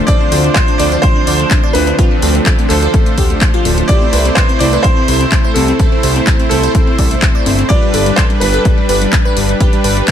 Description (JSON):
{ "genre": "progressive house", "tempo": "126 BPM", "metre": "4/4", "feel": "straight", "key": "D dorian", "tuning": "A4 = 440 Hz", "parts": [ { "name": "airy breathy pad", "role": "sustained chords", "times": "0.0-10.1 s", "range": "C3 to D5", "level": "-22 LUFS", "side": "equal", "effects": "chorus, sidechain pumping" }, { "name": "glassy wavetable pluck", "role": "arpeggios", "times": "0.0-10.1 s", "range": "G3 to D5", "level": "-19 LUFS", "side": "left 1 dB", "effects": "chorus, sidechain pumping, tape echo" }, { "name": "soft supersaw", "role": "stabs", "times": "0.0-10.1 s", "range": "F3 to C5", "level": "-18 LUFS", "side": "right 3 dB", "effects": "sidechain pumping, tape echo" }, { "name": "bright baby grand piano", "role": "melody", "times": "0.1-10.1 s", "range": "A4 to D5", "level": "-19 LUFS", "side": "equal", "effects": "tape echo" }, { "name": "electronic kick drum", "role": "drums", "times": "0.1-10.1 s", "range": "none", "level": "-12 LUFS", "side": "equal", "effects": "small room ambience" }, { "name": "house drum kit", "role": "drums", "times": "0.1-10.1 s", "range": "handclaps, hi-hat", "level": "-19 LUFS", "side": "left 2 dB", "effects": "small room ambience, sidechain pumping on hats, sidechain pumping on cymbals" }, { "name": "fat analog bass", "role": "bass", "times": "0.3-10.0 s", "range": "D1 to D2", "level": "-15 LUFS", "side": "equal", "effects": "sidechain pumping" } ], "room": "little or no reverb", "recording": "none", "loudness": "-9 LUFS", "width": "side -9 dB against mid", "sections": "0.0-10.1 A section", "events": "none", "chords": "0.0 Dm7; 3.9 C6; 7.7 G" }